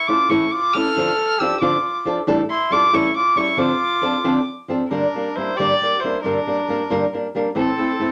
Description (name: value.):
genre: mexican folk, mariachi.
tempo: 91 BPM (dotted quarters).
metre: 6/8.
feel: rubato.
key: D minor, G dorian from 4.9 s.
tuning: A4 = 439 Hz.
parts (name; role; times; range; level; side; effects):
dark violin; melody; 0.0-8.1 s; A4 to F6; -22 LUFS; equal; none.
mellow trumpet; second line; 0.0-8.1 s; C4 to A4; -28 LUFS; equal; none.
flamenco guitar; accompaniment; 0.1-8.1 s; G2 to Bb4; -23 LUFS; equal; none.
room: wet studio ambience, RT60 0.5 s.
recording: none.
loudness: -19 LUFS.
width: mono.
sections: 0.0-4.9 A section; 4.9-8.1 B section.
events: none.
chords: 0.0 A; 1.0 Dm; 2.3 A7sus4; 2.9 A7; 3.6 Dm7; 4.9 Gm; 7.6 Am.